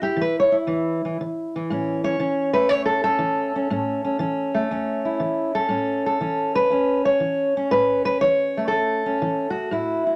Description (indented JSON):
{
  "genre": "acoustic country blues, solo or duo",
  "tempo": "120 BPM",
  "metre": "4/4",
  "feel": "swing 68% on 8ths",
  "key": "A major",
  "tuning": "A4 = 439 Hz",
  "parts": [
    { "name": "fingerpicked steel-string acoustic guitar", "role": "solo", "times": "0.0-10.2 s", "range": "E2 to C#5", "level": "-22 LUFS", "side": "equal", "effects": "none" }
  ],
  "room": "moderate studio reverb, RT60 0.5 s",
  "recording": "none",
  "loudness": "-22 LUFS",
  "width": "mono",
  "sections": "0.0-5.7 A section; 5.7-10.2 B section",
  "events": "steel-string acoustic guitar solo 0.0-5.7",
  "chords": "0.0 N.C.; 1.7 A",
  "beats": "0.19 0.69 1.20 | 1.70 2.20 2.70 3.21 | 3.71 4.21 4.71 5.21 | 5.71 6.21 6.71 7.22 | 7.72 8.22 8.72 9.21 | 9.71"
}